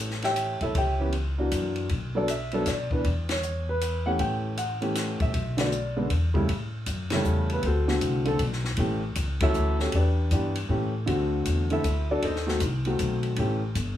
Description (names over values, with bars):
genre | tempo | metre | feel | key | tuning
jazz piano trio | 157 BPM | 3/4 | swing 64% on 8ths | A mixolydian | A4 = 438 Hz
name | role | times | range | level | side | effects
warm upright piano | melody | 0.0-13.6 s | C#3 to G5 | -27 LUFS | equal | none
upright bass | bass | 0.0-14.0 s | G1 to B2 | -28 LUFS | left 1 dB | none
compact cocktail drum kit | drums | 0.1-13.9 s | hi-hat, kick drum, ride cymbal, snare drum | -33 LUFS | left 2 dB | none
room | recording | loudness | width
light reverb | small room ambience | -24 LUFS | side -11 dB against mid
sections
0.0-6.5 A section; 6.5-14.0 A section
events
band accent 3.2, 5.5, 7.1, 9.4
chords
0.0 A7; 0.8 C#dim; 1.5 F#aug7; 1.9 Bm; 3.0 E5; 4.2 A7; 5.3 Bm; 6.1 Emadd11; 6.5 A7; 7.6 D7; 8.8 A7; 9.9 Em7; 10.7 A7; 11.1 D7; 12.2 D#dim7; 13.4 A7